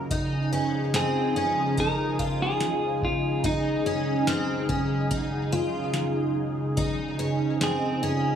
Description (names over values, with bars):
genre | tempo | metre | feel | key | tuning
dream pop | 72 BPM | 4/4 | straight | Db major | A4 = 437 Hz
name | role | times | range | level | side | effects
lush unison pad | sustained chords | 0.0-8.4 s | Db3 to Ab4 | -27 LUFS | right 1 dB | chorus, phaser
picked twelve-string acoustic guitar | arpeggios | 0.1-8.4 s | C4 to F4 | -29 LUFS | left 1 dB | analog chorus, tape echo
booming analog drum machine | drums | 0.1-7.8 s | hi-hat, kick drum, snare drum | -31 LUFS | right 1 dB | none
clean electric guitar | melody | 1.0-8.4 s | Eb4 to Bb4 | -28 LUFS | equal | tape echo
glockenspiel with rubber mallets | texture | 4.3-5.4 s | F6 | -40 LUFS | left 1 dB | tape echo
room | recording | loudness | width
moderate studio reverb, RT60 0.6 s | studio ambience | -23 LUFS | side -8 dB against mid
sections
0.0-8.4 A section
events
none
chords
0.1 Dbadd9; 3.4 Ab7sus4; 6.8 Dbadd9